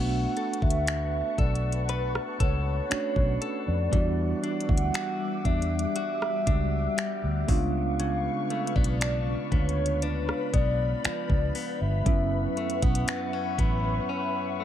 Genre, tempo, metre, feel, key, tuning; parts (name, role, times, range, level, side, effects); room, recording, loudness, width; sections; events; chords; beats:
contemporary R&B; 59 BPM; 4/4; straight; B minor; A4 = 441 Hz
hollow clarinet-like synth lead; melody; 0.0-14.6 s; B4 to B5; -32 LUFS; right 1 dB; chorus, phaser, tremolo, tape echo
mellow tine electric piano; accompaniment; 0.0-14.6 s; F#3 to F#4; -34 LUFS; right 5 dB; fast stereo tremolo
glassy FM pad; sustained chords; 0.0-14.6 s; G3 to D6; -35 LUFS; left 5 dB; ensemble chorus, built-in reverb
direct-recorded clean electric guitar; arpeggios; 0.0-14.6 s; F#2 to B4; -36 LUFS; left 7 dB; tape echo
vintage muted fingered electric bass; bass; 0.0-14.0 s; F#1 to E#2; -28 LUFS; equal
smooth R&B drum kit; drums; 0.4-13.8 s; finger snaps, hi-hat, kick drum, rim click; -27 LUFS; equal; vintage 12-bit sampler grit
light reverb, digital ambience; echo-heavy mix; -24 LUFS; side -10 dB against mid
0.0-14.6 A section
break 14.1-14.6
0.0 Bm9; 3.9 Em9; 7.5 C#7b9; 12.1 F#7sus4
0.88 1.89 2.91 | 3.93 4.94 5.96 6.98 | 7.99 9.01 10.03 11.04 | 12.06 13.08 14.10